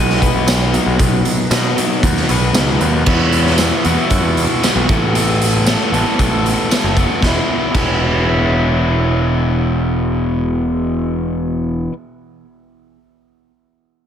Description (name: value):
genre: indie rock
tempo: 116 BPM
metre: 4/4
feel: straight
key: E major from 3.1 s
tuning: A4 = 440 Hz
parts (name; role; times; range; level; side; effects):
- electric guitar through a small old amp; melody; 0.0-2.5 s; D#5; -26 LUFS; right 3 dB; analog delay
- bright tonewheel organ; sustained chords; 0.0-3.0 s; D#3 to F#4; -28 LUFS; right 1 dB; none
- overdriven electric guitar; riff; 0.0-11.9 s; E2 to B4; -20 LUFS; left 9 dB; none
- overdriven electric guitar; riff; 0.0-11.9 s; E2 to A4; -21 LUFS; right 8 dB; wide subtle chorus, analog delay
- growling picked electric bass; bass; 0.0-11.9 s; E1 to B2; -18 LUFS; equal; overdrive
- raw garage drum kit; drums; 0.1-7.9 s; crash cymbal, hi-hat, kick drum, snare drum, tambourine; -17 LUFS; equal; none
room: light reverb, studio reverb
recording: none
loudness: -13 LUFS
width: side -9 dB against mid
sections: 0.0-3.1 A section; 3.1-7.2 B section; 7.2-11.4 C section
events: none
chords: 0.0 B; 3.1 Esus2; 4.9 Asus2; 7.2 E